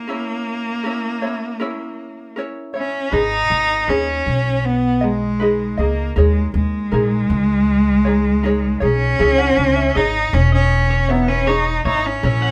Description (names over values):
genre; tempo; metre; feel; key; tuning
acoustic pop; 79 BPM; 4/4; straight; G# minor; A4 = 440 Hz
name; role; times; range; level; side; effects
rich cello; melody; 0.0-12.5 s; G#3 to D#4; -21 LUFS; equal; none
ukulele; accompaniment; 0.0-12.5 s; C#4 to D#5; -25 LUFS; equal; none
upright bass; bass; 3.1-12.5 s; E1 to D#2; -22 LUFS; equal; none
twelve-string electric guitar; arpeggios; 9.4-12.5 s; B4 to F#5; -29 LUFS; equal; none
room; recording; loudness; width
moderate studio reverb, RT60 0.6 s; band playing live in one room; -18 LUFS; mono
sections
0.0-3.1 A section; 3.1-12.5 B section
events
none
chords
0.1 A#dim; 3.1 G#m; 6.2 D#7sus4; 9.2 C#madd9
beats
| 0.09 0.85 1.61 2.36 | 3.12 3.88 4.64 5.40 | 6.16 6.92 7.68 8.44 | 9.19 9.95 10.71 11.47 | 12.23